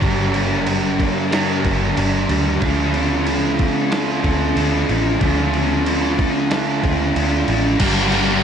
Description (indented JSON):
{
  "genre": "rock, shoegaze and dream pop",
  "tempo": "92 BPM",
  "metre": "4/4",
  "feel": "straight",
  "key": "G minor",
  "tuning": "A4 = 440 Hz",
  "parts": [
    { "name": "semi-hollow electric guitar", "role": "arpeggios", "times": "0.0-8.4 s", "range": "F3 to Bb4", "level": "-27 LUFS", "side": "left 5 dB", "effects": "lush chorus, slapback echo" },
    { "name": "raw garage guitar", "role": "riff", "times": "0.0-8.4 s", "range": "G2 to Bb4", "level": "-21 LUFS", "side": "right 10 dB", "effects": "overdrive, reverse reverb" },
    { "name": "thick fuzz guitar", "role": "riff", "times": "0.0-8.4 s", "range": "G2 to D4", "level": "-21 LUFS", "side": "left 8 dB", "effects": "distortion, ensemble chorus" },
    { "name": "vintage muted picked electric bass", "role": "bass", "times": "0.0-8.4 s", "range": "G1 to D2", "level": "-22 LUFS", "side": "equal", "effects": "none" },
    { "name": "lo-fi sampler-style drum kit", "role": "drums", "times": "0.0-8.3 s", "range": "crash cymbal, kick drum, snare drum", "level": "-24 LUFS", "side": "equal", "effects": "overdrive" },
    { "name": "distorted electric guitar", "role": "riff", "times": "7.8-8.4 s", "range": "G2 to D4", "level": "-19 LUFS", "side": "left 1 dB", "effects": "overdrive" }
  ],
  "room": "light reverb",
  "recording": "nothing above 10.8 kHz",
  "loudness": "-16 LUFS",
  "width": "side -8 dB against mid",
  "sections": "0.0-7.8 A section",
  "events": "none",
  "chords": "0.0 Gm; 2.6 Dm7; 7.8 Gm",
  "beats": "| 0.02 0.67 1.32 1.97 | 2.62 3.27 3.92 4.57 | 5.22 5.87 6.52 7.17 | 7.81"
}